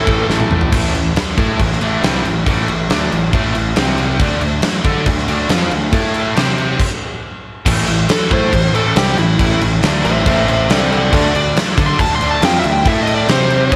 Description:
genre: hard rock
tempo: 139 BPM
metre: 4/4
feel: straight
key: unclear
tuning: A4 = 441 Hz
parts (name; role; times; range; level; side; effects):
- bluesy overdriven lead guitar; melody; 0.0-0.3, 8.1-13.7 s; E4 to C6; -20 LUFS; equal; distortion
- high-gain distorted guitar; riff; 0.0-13.8 s; A2 to D5; -26 LUFS; equal; distortion, slapback echo
- overdriven electric guitar; riff; 0.0-13.8 s; A2 to D5; -25 LUFS; equal; slapback echo
- sludgy distorted guitar; riff; 0.0-13.8 s; A2 to D5; -25 LUFS; equal; none
- fuzz picked electric bass; bass; 0.1-13.8 s; A1 to D3; -22 LUFS; equal; overdrive
- huge arena drum kit; drums; 0.1-13.8 s; crash cymbal, kick drum, snare drum, toms; -19 LUFS; equal; none
room: moderate lush hall reverb, RT60 1.9 s, small room ambience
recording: big arena sound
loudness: -15 LUFS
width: mono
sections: 0.7-7.7 A section; 7.7-13.8 B section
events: drum fill 0.3-0.7; stop 6.8-7.7; lead electric guitar solo 7.7-13.8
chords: 0.0 A5; 3.8 C5; 4.2 D5; 5.9 A5; 6.4 C5; 6.8 N.C.; 7.7 A5; 10.7 C5; 11.1 D5; 12.8 A5; 13.3 C5

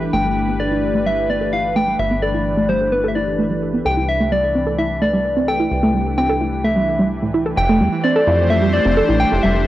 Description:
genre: IDM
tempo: 129 BPM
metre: 4/4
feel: straight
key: unclear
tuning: A4 = 440 Hz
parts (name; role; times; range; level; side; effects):
- phased analog pad; sustained chords; 0.0-9.7 s; E3 to C5; -23 LUFS; equal; phaser, chorus
- deep acid bass; bass; 0.0-9.7 s; F1 to F2; -23 LUFS; equal; none
- soft struck synth lead; melody; 0.1-9.7 s; B4 to G5; -20 LUFS; left 1 dB; chorus, tape echo
- warbly dusty pluck; arpeggios; 0.1-9.5 s; A2 to A4; -20 LUFS; right 1 dB; chorus, cassette tape, analog delay
room: light reverb, digital ambience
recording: dry, gritty hardware recording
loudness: -15 LUFS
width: side -14 dB against mid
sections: 0.0-7.6 A section; 7.6-9.7 B section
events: filter sweep on analog synth pad 0.0-7.6; filter sweep on synth arpeggio sound 0.0-7.6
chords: 0.1 G; 3.9 Cmaj9; 7.6 Fmaj9

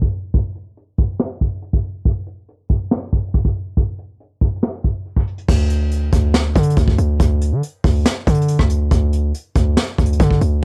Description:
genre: hip hop, trap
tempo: 140 BPM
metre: 4/4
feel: half-time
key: unclear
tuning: A4 = 440 Hz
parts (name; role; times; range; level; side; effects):
- soft brush drum kit; drums; 0.0-10.5 s; crash cymbal, hi-hat, kick drum, rim click, snare drum; -20 LUFS; equal; cassette tape
- hard-hitting 808-style bass; bass; 5.5-10.6 s; D2 to D3; -18 LUFS; equal; none
room: little or no reverb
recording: home recording on cassette, low-pass filter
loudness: -18 LUFS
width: mono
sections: 0.0-5.5 A section; 5.5-10.6 B section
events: filter sweep 0.0-5.5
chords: none

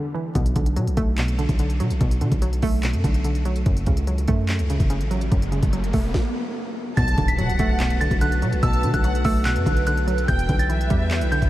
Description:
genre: hip hop, trap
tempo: 145 BPM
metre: 4/4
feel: half-time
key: B minor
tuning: A4 = 440 Hz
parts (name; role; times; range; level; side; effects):
- hollow square pluck; accompaniment; 0.0-11.5 s; E2 to A3; -26 LUFS; right 1 dB; chorus
- hard-hitting 808-style bass; bass; 0.4-11.5 s; E1 to B2; -22 LUFS; equal; none
- trap drum kit; drums; 0.4-11.5 s; handclaps, hi-hat, kick drum, snare drum; -24 LUFS; equal; none
- riser and impact; sound effects; 4.7-8.6 s; none; -32 LUFS; equal; none
- delicate synth tine bell; melody; 7.0-11.5 s; E6 to B6; -26 LUFS; right 1 dB; chorus, analog delay
- warm symphonic violin section; second line; 7.0-11.5 s; E5 to A5; -31 LUFS; left 1 dB; analog delay
- warbly tape-like pad; sustained chords; 7.4-11.5 s; D3 to B4; -30 LUFS; equal; chorus, built-in reverb
room: moderate huge ambient reverb, RT60 7.2 s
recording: dreamy mix soaked in reverb, vinyl crackle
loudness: -19 LUFS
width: side -15 dB against mid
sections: 0.0-7.0 A section; 7.0-11.5 B section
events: riser 4.7-7.0; stop 6.1-7.0; impact 7.0-8.6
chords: 0.4 Bm7; 3.7 F#m; 7.0 Bm7; 10.3 Em7

